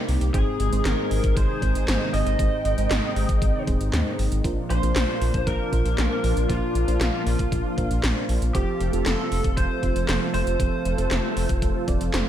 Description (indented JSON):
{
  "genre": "synthwave",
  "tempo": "117 BPM",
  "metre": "4/4",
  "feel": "straight",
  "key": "unclear",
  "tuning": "A4 = 437 Hz",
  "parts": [
    { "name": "warm analog pad", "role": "sustained chords", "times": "0.0-12.3 s", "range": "C3 to G5", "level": "-30 LUFS", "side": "equal", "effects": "chorus, sidechain pumping" },
    { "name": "mellow FM electric piano", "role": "stabs", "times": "0.0-12.3 s", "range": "Ab2 to D5", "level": "-31 LUFS", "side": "right 2 dB", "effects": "chorus, tape echo" },
    { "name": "round analog bass", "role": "bass", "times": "0.1-12.2 s", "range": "Eb1 to Eb2", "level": "-24 LUFS", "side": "equal", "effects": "none" },
    { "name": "80s electronic pad drums", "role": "drums", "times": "0.1-12.2 s", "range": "handclaps, hi-hat, snare drum", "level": "-29 LUFS", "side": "equal", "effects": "none" },
    { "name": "lead guitar through a small cranked amp", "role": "melody", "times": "0.3-11.8 s", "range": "F4 to Eb5", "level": "-29 LUFS", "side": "equal", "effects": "overdrive, lush chorus, tape echo" },
    { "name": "FM electric piano with soft pad layer", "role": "second line", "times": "0.3-11.8 s", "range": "F4 to Eb5", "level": "-35 LUFS", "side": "right 2 dB", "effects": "chorus, cassette tape, tape echo" },
    { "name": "electronic kick drum", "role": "drums", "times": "0.3-12.0 s", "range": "none", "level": "-25 LUFS", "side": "equal", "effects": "none" }
  ],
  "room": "light reverb",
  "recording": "none",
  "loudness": "-21 LUFS",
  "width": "side -11 dB against mid",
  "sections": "0.0-12.3 A section",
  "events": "drum fill 12.1",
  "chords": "0.3 Ab; 4.4 Bbadd9; 8.5 F"
}